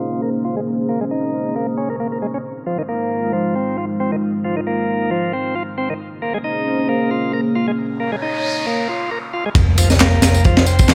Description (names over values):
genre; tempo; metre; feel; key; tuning
breakbeat, breaks; 135 BPM; 4/4; swing 55% on 16ths; Bb minor; A4 = 439 Hz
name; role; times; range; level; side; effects
dark analog pad; sustained chords; 0.0-9.5 s; Ab3 to Db5; -24 LUFS; equal; chorus, sidechain pumping
bright tonewheel organ; riff; 0.0-10.9 s; Eb3 to Bb4; -24 LUFS; equal; overdrive, stopped rotary speaker, low-pass filter, dub echo
noise sweep and impact; sound effects; 8.1-10.9 s; none; -27 LUFS; equal; none
hollow-body short-scale picked electric bass; bass; 9.6-10.9 s; F1 to F2; -18 LUFS; equal; none
crunchy breakbeat drum kit; drums; 9.6-10.9 s; kick drum, ride cymbal, snare drum; -16 LUFS; equal; none
electronic tambourine and handclaps; drums; 9.6-10.9 s; none; -24 LUFS; equal; none
room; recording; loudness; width
moderate lush hall reverb, RT60 1.9 s, studio reverb; low-pass filter; -19 LUFS; mono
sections
0.0-9.6 A section; 9.6-10.9 B section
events
filter sweep on analog synth pad 0.0-9.6; filter sweep 0.0-9.6; noise sweep 8.1-9.6; drop 9.6-10.9; impact 9.6-10.9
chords
0.0 Bbm11; 2.4 Fm7; 6.0 Bbm11; 9.6 F5